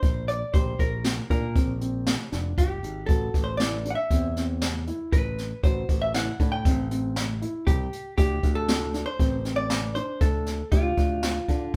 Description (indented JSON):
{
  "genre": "progressive instrumental, band music in an uneven meter",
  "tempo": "118 BPM",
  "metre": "5/4",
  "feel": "straight",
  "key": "unclear",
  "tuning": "A4 = 438 Hz",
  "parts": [
    { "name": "vintage hollow-body jazz guitar", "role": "melody", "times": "0.0-11.8 s", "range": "F4 to G5", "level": "-33 LUFS", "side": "equal", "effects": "none" },
    { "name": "dark concert grand piano", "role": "arpeggios", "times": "0.0-11.6 s", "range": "C4 to G4", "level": "-35 LUFS", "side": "equal", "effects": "none" },
    { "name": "modern bright fingered electric bass", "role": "bass", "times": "0.0-11.8 s", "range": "F1 to D3", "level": "-32 LUFS", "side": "equal", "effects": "none" },
    { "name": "jazz brush drum kit", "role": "drums", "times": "0.0-11.6 s", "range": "hi-hat, kick drum, snare drum", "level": "-27 LUFS", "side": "equal", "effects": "none" }
  ],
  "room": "moderate studio reverb, RT60 0.6 s",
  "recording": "band playing live in one room",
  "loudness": "-26 LUFS",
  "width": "mono",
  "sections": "0.0-11.8 A section",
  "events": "none",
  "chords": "0.0 Bbadd9; 3.1 Am; 8.2 Dm"
}